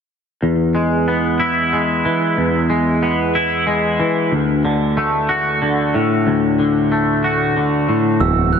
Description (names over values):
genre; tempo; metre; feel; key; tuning
rock; 62 BPM (dotted quarters); 6/8; straight; D lydian; A4 = 440 Hz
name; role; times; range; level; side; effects
twangy electric guitar; arpeggios; 0.4-8.6 s; D2 to F#4; -15 LUFS; equal; lush chorus, slapback echo
glockenspiel with rubber mallets; arpeggios; 8.2-8.6 s; E6 to F#6; -19 LUFS; right 14 dB; slapback echo
growling picked electric bass; bass; 8.2-8.6 s; D1; -17 LUFS; right 1 dB; overdrive
room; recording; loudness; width
moderate huge ambient reverb, RT60 6.7 s; none; -14 LUFS; side -7 dB against mid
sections
0.4-8.2 A section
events
none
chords
0.4 E; 4.3 D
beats
| 0.43 1.40 | 2.38 3.35 | 4.32 5.29 | 6.27 7.24 | 8.21